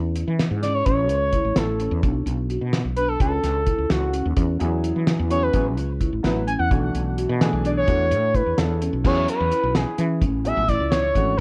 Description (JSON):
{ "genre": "progressive instrumental, band music in an uneven meter", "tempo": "256 BPM (eighths)", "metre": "5/8", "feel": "straight", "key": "E mixolydian", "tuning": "A4 = 440 Hz", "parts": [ { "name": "woody fretless electric bass", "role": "bass", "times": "0.0-11.4 s", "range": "G#1 to E3", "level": "-26 LUFS", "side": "equal", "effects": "none" }, { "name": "marimba with soft mallets", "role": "arpeggios", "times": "0.2-11.4 s", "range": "C#4 to F#4", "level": "-31 LUFS", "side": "equal", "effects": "digital delay" }, { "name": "cloth-damped thuddy drum kit", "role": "drums", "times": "0.2-11.3 s", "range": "crash cymbal, hi-hat, kick drum, snare drum", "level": "-26 LUFS", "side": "equal", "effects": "none" }, { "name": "expressive portamento lead", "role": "melody", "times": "0.6-11.4 s", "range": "F#4 to G#5", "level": "-26 LUFS", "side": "equal", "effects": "chorus, digital delay" }, { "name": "warm concert grand piano", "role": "accompaniment", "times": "4.6-11.3 s", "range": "E3 to B4", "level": "-30 LUFS", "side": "equal", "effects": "none" } ], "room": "light reverb", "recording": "worn, warbling old tape, cassette tape, warbly pitch drift", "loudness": "-22 LUFS", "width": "mono", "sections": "0.0-9.0 A section; 9.0-11.4 B section", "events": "analog synth lead solo 9.0-11.4", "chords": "0.0 E6; 0.9 A; 2.0 Bm; 3.2 A/C#; 4.4 E6; 5.5 Amaj7; 6.7 Bm; 7.9 E7sus4; 9.0 E6; 10.2 Amaj7" }